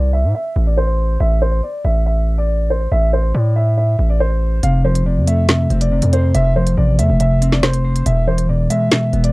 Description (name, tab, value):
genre	hip hop, drill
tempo	140 BPM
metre	4/4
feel	half-time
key	A harmonic minor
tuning	A4 = 440 Hz
part	dark grand piano	melody	0.0-9.3 s	C5 to F5	-21 LUFS	equal	low-pass filter, slapback echo
part	distorted 808-style bass	bass	0.0-9.3 s	E1 to A2	-16 LUFS	equal	distortion
part	mellow electric guitar	accompaniment	4.6-9.3 s	B2 to C5	-16 LUFS	equal	low-pass filter
part	drill drum kit	drums	4.6-9.3 s	hi-hat, snare drum	-19 LUFS	equal	none
room	little or no reverb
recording	dark, warm production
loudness	-13 LUFS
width	side -22 dB against mid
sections	0.0-9.3 A section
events	break 0.0-4.6; filter sweep 0.0-4.6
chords	0.0 Am; 4.6 F; 8.1 E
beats	0.35 0.77 | 1.20 1.63 2.06 2.49 | 2.92 3.35 3.77 4.20 | 4.63 5.06 5.49 5.92 | 6.35 6.77 7.20 7.63 | 8.06 8.49 8.92